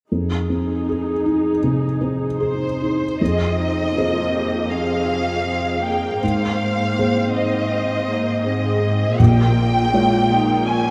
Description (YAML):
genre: cinematic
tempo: 80 BPM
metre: 4/4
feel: rubato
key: F minor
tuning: A4 = 441 Hz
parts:
  - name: dark studio viola section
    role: accompaniment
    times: 0.1-10.9 s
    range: Bb3 to C5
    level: -26 LUFS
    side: equal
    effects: none
  - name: felt-muted upright piano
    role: accompaniment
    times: 0.1-10.9 s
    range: Bb1 to Db5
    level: -23 LUFS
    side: equal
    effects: none
  - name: rich studio violin section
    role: melody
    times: 2.4-10.9 s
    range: C5 to Ab5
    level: -25 LUFS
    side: equal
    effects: none
  - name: clear studio cello section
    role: bass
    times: 3.2-10.9 s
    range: F2 to Bb2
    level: -26 LUFS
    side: equal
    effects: none
room: wet huge ambient reverb, RT60 7.5 s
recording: in a vast, echoing space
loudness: -19 LUFS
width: mono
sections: 0.1-3.2 A section; 3.2-10.9 B section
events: none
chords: 0.1 Fm7; 6.2 Abadd9; 9.2 Bbm7